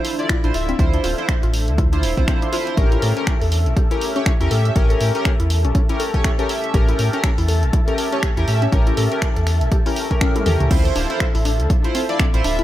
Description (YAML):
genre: deep house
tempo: 121 BPM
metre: 4/4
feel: swing 58% on 16ths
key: D minor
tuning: A4 = 440 Hz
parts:
  - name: chorused polysynth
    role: stabs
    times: 0.0-12.6 s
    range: C#4 to E5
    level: -24 LUFS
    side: equal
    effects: sidechain pumping, analog delay
  - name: punchy analog drum machine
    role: drums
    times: 0.0-12.6 s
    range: crash cymbal, finger snaps, hi-hat, toms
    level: -27 LUFS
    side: equal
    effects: none
  - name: granular cloud pad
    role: texture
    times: 0.0-12.6 s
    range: D4 to A5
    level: -28 LUFS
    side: equal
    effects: built-in reverb, sidechain pumping
  - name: mallet-like synth pluck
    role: arpeggios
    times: 0.3-12.6 s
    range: C4 to A4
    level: -28 LUFS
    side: left 3 dB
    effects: chorus, sidechain pumping, tape echo
  - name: electronic kick drum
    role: drums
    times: 0.3-12.3 s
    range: none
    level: -18 LUFS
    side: equal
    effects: none
  - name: sub bass with octave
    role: bass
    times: 0.4-12.6 s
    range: D1 to A2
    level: -19 LUFS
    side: equal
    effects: sidechain pumping
room: light reverb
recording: echo-heavy mix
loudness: -16 LUFS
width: side -14 dB against mid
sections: 0.0-10.7 A section; 10.7-12.6 B section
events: drum fill 10.3-10.7; drop 10.7-12.6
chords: 0.0 Dm9; 2.8 A7b9; 10.7 Dm9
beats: 0.29 | 0.79 1.29 1.78 2.28 | 2.77 3.27 3.77 4.26 | 4.76 5.25 5.75 6.25 | 6.74 7.24 7.73 8.23 | 8.72 9.22 9.72 10.21 | 10.71 11.20 11.70 12.20